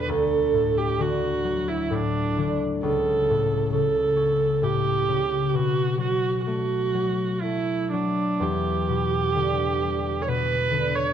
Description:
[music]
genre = celtic folk, Celtic slow air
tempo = 60-68 BPM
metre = 3/4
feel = rubato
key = E dorian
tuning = A4 = 440 Hz
[part]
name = dark viola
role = melody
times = 0.0-11.1 s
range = D4 to C#5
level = -24 LUFS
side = right 5 dB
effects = none
[part]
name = concert harp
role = accompaniment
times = 0.0-11.1 s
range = C#2 to C#4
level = -25 LUFS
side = left 4 dB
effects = none
[sound]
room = light reverb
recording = dark, warm production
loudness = -21 LUFS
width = side -9 dB against mid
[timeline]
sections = 0.0-11.1 A section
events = none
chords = 0.1 D; 2.8 A7/C#; 5.5 B5; 8.4 Em7

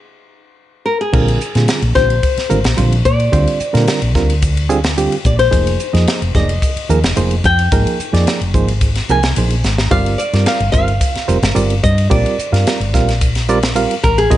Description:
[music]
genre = electric jazz fusion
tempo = 109 BPM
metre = 4/4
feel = straight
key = unclear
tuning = A4 = 439 Hz
[part]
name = flamenco guitar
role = melody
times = 0.0-14.4 s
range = Ab4 to Ab5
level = -19 LUFS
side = left 2 dB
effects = none
[part]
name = barky reed electric piano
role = accompaniment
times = 1.1-14.4 s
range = D3 to F5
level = -19 LUFS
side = right 4 dB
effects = overdrive, fast tremolo
[part]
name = woody fretless electric bass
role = bass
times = 1.1-14.4 s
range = F1 to Bb2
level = -15 LUFS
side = equal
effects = none
[part]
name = crisp fusion drum kit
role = drums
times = 1.1-14.4 s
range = crash cymbal, hi-hat, kick drum, ride cymbal, snare drum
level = -18 LUFS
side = equal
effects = none
[sound]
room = light reverb, small room ambience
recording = nothing above 10.3 kHz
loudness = -12 LUFS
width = side -13 dB against mid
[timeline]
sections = 0.0-1.1 A section; 1.1-14.4 B section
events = stop 0.0-1.1; drum fill 9.6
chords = 0.0 N.C.; 1.1 Bb69; 5.5 Fm9; 9.9 Gm7

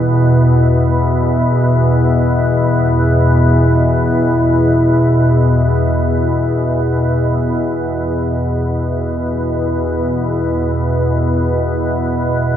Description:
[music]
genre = ambient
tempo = free time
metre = none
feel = none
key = unclear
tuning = A4 = 440 Hz
[part]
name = organ-like drone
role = solo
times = 0.0-12.6 s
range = E2 to B2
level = -12 LUFS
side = equal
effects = ensemble chorus, built-in reverb, tape echo
[sound]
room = wet huge ambient reverb, RT60 7.4 s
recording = dreamy mix soaked in reverb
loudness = -12 LUFS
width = side -10 dB against mid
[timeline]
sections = 0.0-7.6 A section; 7.6-12.6 B section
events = none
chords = 0.0 E5

